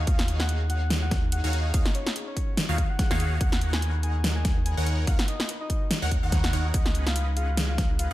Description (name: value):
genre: future bass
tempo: 144 BPM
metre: 4/4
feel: swing 56% on 16ths, half-time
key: Eb minor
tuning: A4 = 439 Hz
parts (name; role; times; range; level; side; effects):
- concert harp; arpeggios; 0.0-8.1 s; Db4 to B4; -42 LUFS; left 6 dB; vintage 12-bit sampler grit, sidechain pumping, diffuse ambient delay
- wide unison pluck; arpeggios; 0.0-8.1 s; F5 to F#5; -42 LUFS; right 1 dB; none
- supersaw stab; riff; 0.0-8.1 s; Eb3 to F#5; -34 LUFS; equal; phaser, sidechain pumping, diffuse ambient delay
- saturated sub bass; bass; 0.0-8.1 s; Db2 to Eb2; -26 LUFS; equal; sidechain pumping
- soft octave-layered synth lead; melody; 0.1-8.1 s; Db5 to Ab5; -36 LUFS; left 3 dB; chorus, sidechain pumping, tape echo
- big-room dance drum kit; drums; 0.1-8.1 s; hi-hat, snare drum; -30 LUFS; equal; studio reverb
- electronic kick drum; drums; 0.1-7.9 s; none; -26 LUFS; equal; studio reverb
room: light reverb, digital ambience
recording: none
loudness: -23 LUFS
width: side -15 dB against mid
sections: 0.0-8.1 A section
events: none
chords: 0.0 Ebm11; 3.4 Bmaj9/D#; 6.7 Db9sus4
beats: | 0.07 0.49 0.91 1.32 | 1.74 2.16 2.57 2.99 | 3.41 3.82 4.24 4.66 | 5.07 5.49 5.91 6.32 | 6.74 7.16 7.57 7.99